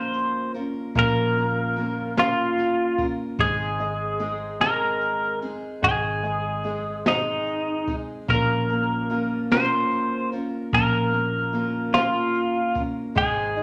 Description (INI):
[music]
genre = six-eight pop ballad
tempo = 49 BPM (dotted quarters)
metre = 6/8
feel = straight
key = unclear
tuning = A4 = 440 Hz
[part]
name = twelve-string electric guitar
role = melody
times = 0.0-13.6 s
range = Eb4 to C5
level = -26 LUFS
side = equal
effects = none
[part]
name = clear concert grand piano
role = accompaniment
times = 0.0-13.6 s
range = Ab3 to Eb4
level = -32 LUFS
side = equal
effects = none
[part]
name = picked steel-string acoustic guitar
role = arpeggios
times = 0.0-13.6 s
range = Ab2 to Bb4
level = -36 LUFS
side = equal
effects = none
[part]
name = vintage muted fingered electric bass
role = bass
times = 0.0-13.6 s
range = Ab1 to Bb1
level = -32 LUFS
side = equal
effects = none
[part]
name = jazz brush drum kit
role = drums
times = 0.1-13.6 s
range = hi-hat, kick drum, snare drum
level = -31 LUFS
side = equal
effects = none
[sound]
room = wet large studio reverb, RT60 0.8 s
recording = none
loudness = -24 LUFS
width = mono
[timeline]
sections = 0.0-13.6 A section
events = none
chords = 0.0 Bbm; 3.4 Ab; 8.3 Bbm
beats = | 0.95 2.17 | 3.39 4.61 | 5.83 7.06 | 8.29 9.51 | 10.73 11.95 | 13.16